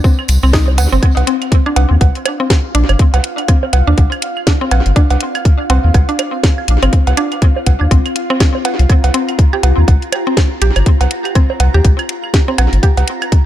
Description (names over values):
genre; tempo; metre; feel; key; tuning
minimal techno; 122 BPM; 4/4; swing 59% on 16ths; unclear; A4 = 440 Hz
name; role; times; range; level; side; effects
mallet-like synth pluck; riff; 0.0-12.9 s; C4 to G4; -20 LUFS; equal; chorus, sidechain pumping, tape echo
electronic kick drum; drums; 0.0-13.4 s; none; -10 LUFS; equal; none
tambourine; percussion; 0.0-1.0 s; none; -28 LUFS; right 5 dB; dub echo
claves, woodblock, bongos and cowbell; percussion; 0.2-13.3 s; none; -22 LUFS; right 8 dB; dub echo
saturated sub bass; bass; 0.3-13.0 s; G1 to Eb2; -11 LUFS; equal; sidechain pumping
garage drum kit; drums; 0.3-13.4 s; hi-hat, snare drum; -20 LUFS; left 1 dB; dub echo
pulsing gated texture; texture; 1.0-13.5 s; F4 to Bb5; -23 LUFS; equal; chorus, built-in reverb, sidechain pumping
room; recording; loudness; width
digital ambience; echo-heavy mix; -10 LUFS; side -12 dB against mid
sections
0.0-1.0 A section; 1.0-13.5 B section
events
drop 1.0-13.5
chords
0.0 Cm; 1.0 C7(no3)